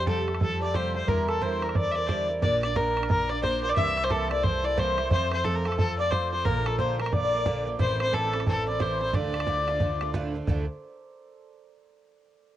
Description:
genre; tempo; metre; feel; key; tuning
celtic folk, Celtic hornpipe; 179 BPM; 4/4; swing 61% on 8ths; D minor; A4 = 440 Hz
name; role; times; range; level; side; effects
clear fiddle; melody; 0.0-10.1 s; A4 to E5; -29 LUFS; left 1 dB; plate reverb
hammered dulcimer; second line; 0.0-11.6 s; A4 to E5; -34 LUFS; right 6 dB; cassette tape, plate reverb
mellow accordion; second line; 0.0-10.1 s; A4 to E5; -32 LUFS; left 7 dB; cassette tape, plate reverb
picked twelve-string acoustic guitar; accompaniment; 0.0-10.7 s; D2 to Bb4; -33 LUFS; right 4 dB; cassette tape
upright bass; bass; 0.0-10.7 s; A1 to F2; -32 LUFS; left 1 dB; none
bodhran; percussion; 0.1-10.7 s; none; -28 LUFS; right 2 dB; none
room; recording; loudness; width
moderate booth ambience, RT60 0.2 s; home recording on cassette; -24 LUFS; side -12 dB against mid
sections
0.0-10.5 A section; 10.5-11.8 B section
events
none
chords
0.0 Fadd9; 1.1 Em7b5; 2.4 Bb; 3.8 C7; 5.1 F; 6.5 Bbmaj7; 7.8 Am; 9.1 Dm; 10.5 D5

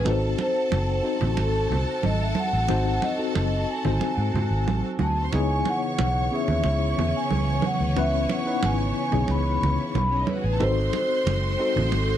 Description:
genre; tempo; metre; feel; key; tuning
lush 1970s-style soul; 91 BPM; 4/4; straight; unclear; A4 = 440 Hz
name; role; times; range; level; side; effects
vibraphone with soft mallets; melody; 0.0-12.2 s; A4 to B5; -28 LUFS; equal; none
warm studio violin section; second line; 0.0-12.2 s; C#4 to C#6; -32 LUFS; right 1 dB; none
tine electric piano; accompaniment; 0.0-12.2 s; B3 to B#4; -29 LUFS; left 6 dB; overdrive, fast stereo tremolo
vintage muted fingered electric bass; bass; 0.0-12.2 s; F#1 to G#2; -25 LUFS; equal; none
string machine, violins; sustained chords; 0.1-12.2 s; C#3 to F#4; -34 LUFS; equal; phaser, ensemble chorus
congas; percussion; 0.1-12.1 s; none; -29 LUFS; right 6 dB; none
room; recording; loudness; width
light reverb; dry, close 1970s-style studio recording; -21 LUFS; side -10 dB against mid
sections
0.0-12.2 A section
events
none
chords
0.1 G#7b9; 5.3 C#m7; 10.6 G#7b9

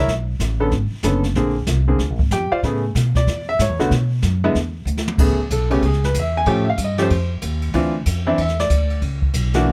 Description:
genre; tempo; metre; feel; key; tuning
jazz piano trio; 188 BPM; 4/4; swing 63% on 8ths; unclear; A4 = 438 Hz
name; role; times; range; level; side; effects
clear baby grand piano; melody; 0.0-9.7 s; C#3 to G#5; -22 LUFS; equal; none
upright bass; bass; 0.0-9.7 s; F#1 to B2; -22 LUFS; equal; none
jazz brush drum kit; drums; 0.1-9.6 s; brushed snare drum, crash cymbal, hi-hat, kick drum, ride cymbal, snare drum, toms; -26 LUFS; equal; none
room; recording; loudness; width
little or no reverb; close, detailed microphones; -19 LUFS; mono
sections
0.0-5.2 A section; 5.2-9.7 B section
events
drum fill 4.9-5.2; grand piano solo 5.2-9.7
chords
0.1 Bm9; 1.4 Bb9; 2.6 Aadd9; 3.9 B5; 4.5 Dsus2; 5.2 Amaj9; 6.5 A7alt; 7.7 Dm9; 9.0 Bsus2

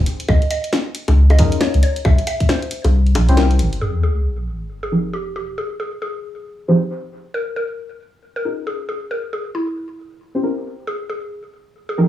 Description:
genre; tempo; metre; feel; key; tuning
UK garage, two-step garage; 136 BPM; 4/4; swing 61% on 16ths; F minor; A4 = 439 Hz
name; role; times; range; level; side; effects
saturated sub bass; bass; 0.0-3.8 s; G1 to F2; -13 LUFS; equal; none
garage drum kit; drums; 0.1-3.8 s; bongos, hi-hat, rim click, snare drum; -22 LUFS; left 2 dB; studio reverb
mallet-like synth pluck; melody; 0.3-12.1 s; E4 to E5; -25 LUFS; equal; chorus, digital delay
electronic kick drum; drums; 0.3-2.5 s; none; -17 LUFS; equal; studio reverb
deep mellow chord stab; stabs; 1.4-12.1 s; F3 to C5; -19 LUFS; equal; chorus, tape echo
sub drop; sound effects; 3.8-5.6 s; none; -22 LUFS; left 1 dB; none
room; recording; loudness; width
light reverb; studio reverb; -17 LUFS; side -13 dB against mid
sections
0.0-3.8 A section; 3.8-12.1 B section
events
kick drops out 2.9-3.8; band accent 3.4; impact 3.8-5.6; filter sweep on synth stab 3.8-12.1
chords
0.3 Db69; 1.8 C7b9; 3.8 Fm11; 7.3 Db69; 8.9 C7b9; 10.9 Fm11

